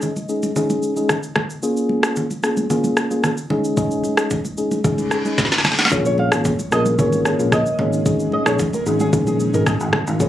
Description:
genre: afrobeats.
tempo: 112 BPM.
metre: 4/4.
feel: straight.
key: unclear.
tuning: A4 = 445 Hz.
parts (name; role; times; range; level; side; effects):
marimba with medium mallets; melody; 0.0-0.3, 5.9-10.3 s; Bb4 to Eb5; -25 LUFS; left 2 dB; ping-pong delay.
mellow tine electric piano; accompaniment; 0.0-10.3 s; Ab3 to Ab4; -20 LUFS; left 1 dB; auto-pan.
afro-pop drum kit; drums; 0.0-10.3 s; kick drum, rim click, shaker, snare drum, toms; -20 LUFS; equal; none.
congas; percussion; 0.0-10.1 s; none; -25 LUFS; right 2 dB; none.
reverse cymbal and impact; sound effects; 5.0-8.1 s; none; -28 LUFS; left 2 dB; none.
ethereal airy pad; sustained chords; 6.6-10.3 s; Db3 to Db4; -28 LUFS; equal; ensemble chorus, built-in reverb, tremolo.
fingered electric bass; bass; 5.9-10.3 s; Ab1 to Bb1; -22 LUFS; right 1 dB; none.
flamenco guitar; riff; 6.1-9.9 s; Ab4 to F5; -26 LUFS; right 2 dB; ping-pong delay.
room: little or no reverb.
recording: recorded on a phone in the room, club reverb, compression.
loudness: -16 LUFS.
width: side -12 dB against mid.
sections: 0.0-5.9 A section; 5.9-10.3 B section.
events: reverse cymbal 5.0-5.9; drum fill 5.4-5.9; impact 5.9-8.1.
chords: 0.0 Absus4; 1.6 Bbm7; 3.5 Absus4; 5.9 Bbm7; 7.8 Absus4.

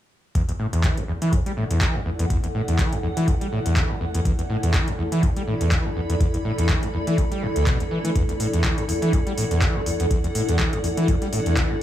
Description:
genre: acid house.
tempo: 123 BPM.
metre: 4/4.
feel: swing 55% on 16ths.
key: unclear.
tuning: A4 = 439 Hz.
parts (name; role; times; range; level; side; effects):
overdriven acid bass; riff; 0.4-11.8 s; D2 to G3; -23 LUFS; equal; distortion, wide subtle chorus, sidechain pumping, tape echo.
electro analog drum machine; drums; 0.4-11.7 s; handclaps, hi-hat; -29 LUFS; equal; overdrive.
electronic kick drum; drums; 0.4-11.7 s; none; -23 LUFS; equal; overdrive.
granular cloud pad; texture; 1.2-11.8 s; E4 to B5; -28 LUFS; equal; built-in reverb, sidechain pumping.
room: light reverb.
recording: studio reverb.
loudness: -20 LUFS.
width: side -12 dB against mid.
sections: 0.4-11.8 A section.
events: none.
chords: 0.4 E7(no3).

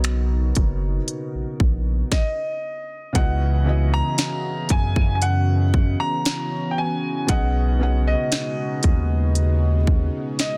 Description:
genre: contemporary R&B.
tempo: 58 BPM.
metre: 4/4.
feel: straight.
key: C# dorian.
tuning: A4 = 443 Hz.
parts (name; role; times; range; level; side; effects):
clear concert grand piano; melody; 0.0-10.6 s; C#5 to A#5; -30 LUFS; equal; digital delay.
felt-muted upright piano; accompaniment; 0.0-10.6 s; B2 to F#5; -32 LUFS; equal; none.
chorused pulse-width pad; sustained chords; 0.0-10.6 s; C#3 to D#5; -32 LUFS; equal; none.
saturated sub bass; bass; 0.0-10.1 s; F#1 to F#2; -23 LUFS; equal; none.
trap drum kit; drums; 0.0-10.6 s; finger snaps, hi-hat, kick drum, snare drum; -23 LUFS; equal; soft clipping on snare.
room: digital ambience.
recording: dense, heavily limited modern master.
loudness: -21 LUFS.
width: mono.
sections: 0.0-3.2 A section; 3.2-10.6 B section.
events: stop 2.1-3.2.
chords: 0.0 Bmaj9; 3.2 C#m11; 7.3 B69.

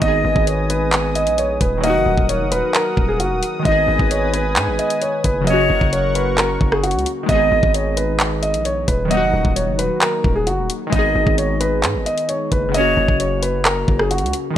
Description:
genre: hip hop, trap.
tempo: 132 BPM.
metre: 4/4.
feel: half-time.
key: G# minor.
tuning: A4 = 442 Hz.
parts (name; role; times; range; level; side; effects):
dark grand piano; melody; 0.0-14.3 s; F#4 to D#5; -20 LUFS; right 1 dB; digital delay.
silver concert flute; second line; 0.0-13.2 s; C#5 to F#5; -24 LUFS; equal; digital delay.
glassy digital keys; accompaniment; 0.0-14.6 s; C#3 to G#4; -23 LUFS; left 1 dB; chorus.
warm analog pad; sustained chords; 0.0-7.3 s; A#4 to D#6; -27 LUFS; equal; chorus.
hard-hitting 808-style bass; bass; 0.0-14.3 s; D#1 to G#2; -22 LUFS; equal; none.
trap drum kit; drums; 0.0-14.4 s; handclaps, hi-hat, kick drum, rim click; -20 LUFS; equal; none.
room: light reverb.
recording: none.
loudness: -15 LUFS.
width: side -11 dB against mid.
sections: 0.0-7.3 A section; 7.3-14.6 A section.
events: none.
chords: 0.0 G#m; 1.8 D#m; 3.7 G#m; 5.5 F#; 7.3 G#m; 9.1 D#m; 10.9 G#m; 12.7 F#.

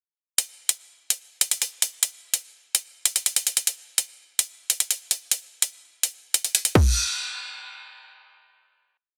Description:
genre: hip hop.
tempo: 146 BPM.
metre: 4/4.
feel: half-time.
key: none.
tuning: none.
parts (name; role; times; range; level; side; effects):
drill drum kit; drums; 0.4-6.8 s; crash cymbal, hi-hat, kick drum; -22 LUFS; equal; none.
room: little or no reverb.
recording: heavily compressed radio sound.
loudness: -24 LUFS.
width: mono.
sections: 0.4-7.0 breakdown; 7.0-9.2 final hit.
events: none.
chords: none.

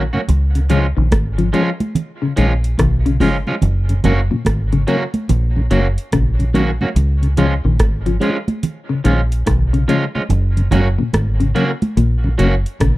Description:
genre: roots reggae.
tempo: 72 BPM.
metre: 4/4.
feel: swing 64% on 16ths.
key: F# major.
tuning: A4 = 439 Hz.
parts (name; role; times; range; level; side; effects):
electric guitar at the edge of break-up; accompaniment; 0.0-12.5 s; E#3 to F#4; -23 LUFS; right 2 dB; tape echo.
clean electric guitar; arpeggios; 0.0-13.0 s; G#2 to E#3; -20 LUFS; left 4 dB; lush chorus.
deep dub fingered electric bass; bass; 0.0-13.0 s; F#1 to C#2; -16 LUFS; equal; none.
mellow tonewheel organ; accompaniment; 0.1-12.5 s; F#2 to C#4; -20 LUFS; left 1 dB; slow rotary speaker.
congas; percussion; 0.1-13.0 s; none; -22 LUFS; right 3 dB; none.
booming analog drum machine; drums; 0.3-13.0 s; hi-hat, kick drum, rim click; -20 LUFS; equal; tape echo.
room: little or no reverb.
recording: dry, close 1970s-style studio recording.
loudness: -14 LUFS.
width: side -17 dB against mid.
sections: 0.0-13.0 A section.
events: none.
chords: 0.3 C#; 3.6 F#; 7.0 C#; 10.3 F#.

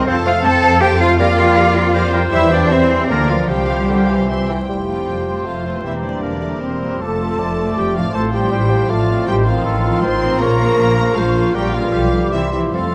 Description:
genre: classical.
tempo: 143-163 BPM.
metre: 3/4.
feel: rubato.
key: F major.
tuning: A4 = 440 Hz.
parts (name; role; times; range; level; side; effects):
warm symphonic violin section; melody; 0.0-12.9 s; G3 to C6; -32 LUFS; equal; none.
rich studio violin section; second line; 0.0-12.9 s; F4 to C6; -31 LUFS; equal; none.
small flute group; second line; 0.0-12.9 s; F4 to D6; -29 LUFS; equal; none.
warm clarinet; second line; 0.0-12.9 s; E4 to D5; -29 LUFS; equal; none.
warm oboe; second line; 0.0-12.9 s; F4 to D5; -29 LUFS; equal; none.
warm bassoon; accompaniment; 0.0-12.9 s; D3 to C4; -28 LUFS; equal; none.
warm symphonic viola section; accompaniment; 0.0-12.9 s; C3 to G5; -30 LUFS; equal; none.
warm French horn section; sustained chords; 0.0-12.9 s; A2 to C5; -25 LUFS; equal; none.
concert harp; arpeggios; 0.0-12.9 s; E2 to Eb5; -29 LUFS; equal; none.
mellow trumpet; stabs; 0.0-12.9 s; C4 to A5; -26 LUFS; equal; none.
warm symphonic cello section; bass; 0.0-12.9 s; C3 to A4; -23 LUFS; equal; none.
warm symphonic double bass section; bass; 0.0-12.9 s; E1 to F2; -22 LUFS; equal; none.
room: moderate concert hall reverb, RT60 2.0 s.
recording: vinyl crackle.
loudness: -16 LUFS.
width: mono.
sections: 0.0-4.7 A section; 4.7-12.9 B section.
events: none.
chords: 0.1 F; 1.2 Gm7/F; 2.3 C/E; 3.1 Bb/D; 3.5 Csus4; 4.3 C; 4.7 F; 5.8 C7/E; 7.0 F; 8.2 F/A; 9.3 F7/A; 10.4 Bbm; 11.6 Gm7b5/Bb; 11.9 G7/B; 12.3 C.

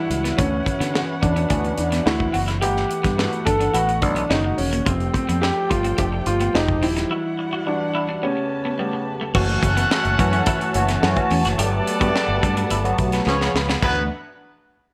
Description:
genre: polished 1980s jazz-funk pop.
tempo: 107 BPM.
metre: 4/4.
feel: straight.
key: D major.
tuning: A4 = 440 Hz.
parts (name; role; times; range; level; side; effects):
warm concert grand piano; melody; 0.0-9.0 s; C4 to A4; -26 LUFS; equal; none.
tine electric piano; accompaniment; 0.0-14.1 s; C#3 to F#5; -28 LUFS; equal; analog chorus.
dark studio string section; sustained chords; 0.0-14.1 s; G3 to B5; -34 LUFS; equal; none.
fingered electric bass; bass; 0.1-14.1 s; Eb1 to D3; -26 LUFS; equal; none.
tight funk drum kit; drums; 0.1-14.0 s; crash cymbal, hi-hat, kick drum, snare drum; -26 LUFS; equal; none.
electric guitar at the edge of break-up; riff; 0.2-14.0 s; G3 to G4; -32 LUFS; equal; lush chorus.
clear horn section; second line; 9.3-14.0 s; F#3 to F#5; -27 LUFS; equal; none.
room: light reverb.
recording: none.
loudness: -21 LUFS.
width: mono.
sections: 0.0-9.3 A section; 9.3-13.8 B section; 13.8-14.9 C section.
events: break 7.1-9.3; drum fill 13.3-13.8.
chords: 0.4 Dmaj13; 2.1 D9; 2.6 Gmaj13; 4.3 F#69; 4.9 F69; 6.5 Fm9; 7.1 Em9; 8.2 A9; 9.3 F#m7; 11.6 Gmaj9; 13.3 C#7; 13.8 D69.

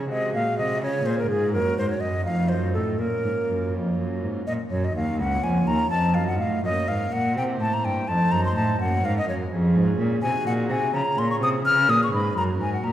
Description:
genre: classical, baroque-style sonata movement with continuo.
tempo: 83 BPM (dotted quarters).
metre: 6/8.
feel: straight.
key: Bb minor.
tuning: A4 = 440 Hz.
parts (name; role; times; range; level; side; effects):
mellow hollow concert flute; melody; 0.0-12.9 s; Ab4 to F6; -24 LUFS; left 2 dB; none.
pipe organ, foundations; accompaniment; 0.0-12.9 s; Db2 to C5; -29 LUFS; right 1 dB; none.
rich cello; bass; 0.0-12.9 s; Db2 to Db3; -24 LUFS; right 1 dB; none.
room: wet recital hall reverb, RT60 1.5 s.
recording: heard from further back in the room.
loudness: -21 LUFS.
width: side -12 dB against mid.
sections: 0.0-4.5 A section; 4.5-12.9 B section.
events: none.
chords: 0.1 Ab7; 0.8 Db; 1.5 Gb; 2.3 F7; 3.0 Bbm; 5.9 F7; 6.6 Gb; 7.4 C7; 8.1 F7; 8.8 Gb; 9.5 Db/F; 10.2 Ab7; 10.9 Db; 11.7 Db5; 12.4 Gb.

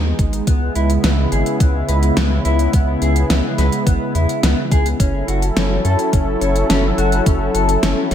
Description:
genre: synthwave.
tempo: 106 BPM.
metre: 4/4.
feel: straight.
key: C# minor.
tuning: A4 = 440 Hz.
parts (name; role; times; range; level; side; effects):
warm analog pad; sustained chords; 0.0-8.1 s; C#3 to A4; -20 LUFS; equal; chorus, sidechain pumping.
round analog bass; bass; 0.0-8.1 s; F#1 to F#2; -18 LUFS; equal; sidechain pumping.
electronic kick drum; drums; 0.2-7.4 s; none; -15 LUFS; equal; overdrive, studio reverb.
pop drum kit; drums; 0.2-8.1 s; hi-hat, snare drum; -22 LUFS; equal; studio reverb, gated reverb.
mellow electric guitar; arpeggios; 0.5-8.1 s; B3 to C#5; -22 LUFS; left 3 dB; wide subtle chorus, ping-pong delay.
room: light reverb, digital ambience.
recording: none.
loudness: -14 LUFS.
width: side -10 dB against mid.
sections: 0.0-8.1 A section.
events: none.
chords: 0.5 C#m7; 5.0 F#m7.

